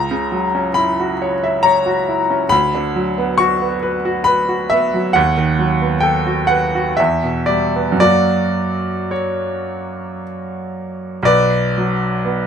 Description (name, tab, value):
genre	classical, romantic nocturne for solo piano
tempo	54-70 BPM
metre	3/4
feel	rubato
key	B minor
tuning	A4 = 439 Hz
part	clear baby grand piano	solo	0.0-12.5 s	B1 to C#6	-15 LUFS	equal	none
room	light reverb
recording	minimal, uncompressed stereo recording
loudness	-14 LUFS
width	side -8 dB against mid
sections	0.0-11.3 A section; 11.3-12.5 B section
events	none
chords	0.0 F#7/C#; 2.5 Bm/D; 5.2 B7/D#; 7.0 Em; 8.0 F#; 11.3 Bm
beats	0.76 1.65 | 2.51 3.39 4.27 | 5.16 6.04 6.98 | 8.02 9.13 10.22 | 11.27 12.24